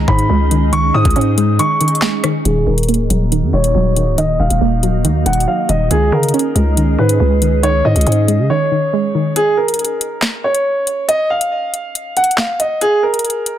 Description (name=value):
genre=hip hop, drill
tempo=139 BPM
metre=4/4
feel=half-time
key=unclear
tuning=A4 = 440 Hz
part: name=dark concert grand piano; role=melody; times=0.0-13.6 s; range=Ab4 to Eb6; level=-17 LUFS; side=right 1 dB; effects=low-pass filter, digital delay
part: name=soft round pluck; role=accompaniment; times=0.0-9.4 s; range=Eb3 to Db4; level=-18 LUFS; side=right 1 dB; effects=chorus, low-pass filter
part: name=glassy FM pad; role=sustained chords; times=0.0-9.3 s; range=Bb3 to Eb5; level=-24 LUFS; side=right 1 dB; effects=ensemble chorus, built-in reverb, low-pass filter
part: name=growling 808-style bass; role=bass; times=0.0-8.5 s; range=Db1 to Db3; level=-15 LUFS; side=equal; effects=none
part: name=drill drum kit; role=drums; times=0.1-13.6 s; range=handclaps, hi-hat, kick drum, rim click, snare drum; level=-18 LUFS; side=left 1 dB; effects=overdrive
room=digital ambience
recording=dense, heavily limited modern master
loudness=-12 LUFS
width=side -11 dB against mid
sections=0.0-2.5 A section; 2.5-9.4 B section; 9.4-13.6 C section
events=break 1.6-2.5, 8.5-9.4, 9.4-13.6; filter sweep 2.5-9.4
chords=0.0 Dbsus2; 2.5 Ebm; 5.9 Dbsus2; 9.4 N.C.